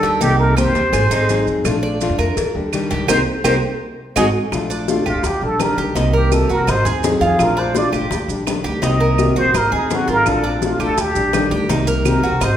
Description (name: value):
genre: latin, Cuban son and guajira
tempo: 167 BPM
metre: 4/4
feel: straight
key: unclear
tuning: A4 = 440 Hz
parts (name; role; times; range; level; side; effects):
- trumpet with plunger mute; melody; 0.0-12.6 s; C4 to Eb5; -20 LUFS; right 1 dB; none
- nylon-string guitar; accompaniment; 0.0-12.4 s; C3 to Ab4; -21 LUFS; left 2 dB; none
- Cuban tres; arpeggios; 0.0-12.6 s; D4 to Eb5; -22 LUFS; right 2 dB; none
- upright bass; bass; 0.0-12.6 s; Ab1 to G2; -21 LUFS; right 1 dB; none
- cowbell and bongos; percussion; 0.0-12.6 s; none; -25 LUFS; left 4 dB; none
- maracas; percussion; 0.0-12.6 s; none; -31 LUFS; right 10 dB; none
- claves; percussion; 0.6-12.6 s; none; -30 LUFS; right 8 dB; none
room: wet recital hall reverb, RT60 1.5 s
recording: recorded in a church or concert hall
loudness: -15 LUFS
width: side -10 dB against mid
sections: 0.0-4.5 A section; 4.5-12.6 B section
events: band accent 3.1-4.5; drum fill 3.6-4.5; muted trumpet solo 4.5-12.6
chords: 0.2 Cm7; 0.9 Ab7; 1.7 Bbmaj7; 2.4 Ebmaj7; 3.1 Cm7; 3.8 Ab7; 4.5 Bbmaj7; 5.2 Ebmaj7; 6.0 Cm7; 6.7 Ab7; 7.4 Bbmaj7; 8.1 Ebmaj7; 8.8 Cm7; 9.5 Ab7; 10.3 Bbmaj7; 11.0 Ebmaj7; 11.7 Cm7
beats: | 0.21 0.57 0.93 1.29 | 1.65 2.01 2.37 2.73 | 3.09 3.44 3.80 4.16 | 4.52 4.88 5.24 5.60 | 5.96 6.32 6.67 7.03 | 7.39 7.75 8.11 8.47 | 8.83 9.19 9.54 9.90 | 10.26 10.62 10.98 11.34 | 11.70 12.05 12.41